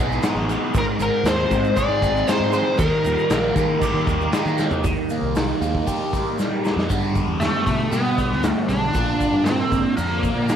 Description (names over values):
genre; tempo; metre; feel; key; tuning
psychedelic rock; 117 BPM; 4/4; straight; unclear; A4 = 440 Hz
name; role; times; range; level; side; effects
tonewheel organ; sustained chords; 0.0-6.9 s; G3 to Ab4; -32 LUFS; right 9 dB; slow rotary speaker, chorus vibrato
crunchy overdriven guitar; riff; 0.0-10.6 s; G2 to Bb4; -23 LUFS; equal; phaser
fingered electric bass; bass; 0.0-10.6 s; G1 to Eb3; -26 LUFS; equal; none
raw garage drum kit; drums; 0.1-10.6 s; crash cymbal, hi-hat, kick drum, snare drum, toms; -24 LUFS; equal; none
tube shaker; percussion; 0.1-10.6 s; none; -44 LUFS; right 14 dB; none
biting lead guitar; melody; 0.8-4.3, 7.4-10.6 s; A3 to D5; -22 LUFS; equal; wah, overdrive, slapback echo
room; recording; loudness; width
light reverb, small room reverb; 1960s-style stereo; -18 LUFS; side -8 dB against mid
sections
0.0-4.8 A section; 4.8-6.9 B section; 6.9-10.6 C section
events
drum fill 4.6, 6.4-6.9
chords
0.0 B6; 0.7 Ab; 2.8 Eb; 6.9 G; 9.0 Bb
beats
0.23 | 0.75 1.26 1.77 2.28 | 2.79 3.31 3.82 4.33 | 4.84 5.36 5.87 6.38 | 6.90 7.41 7.92 8.44 | 8.95 9.46 9.98 10.49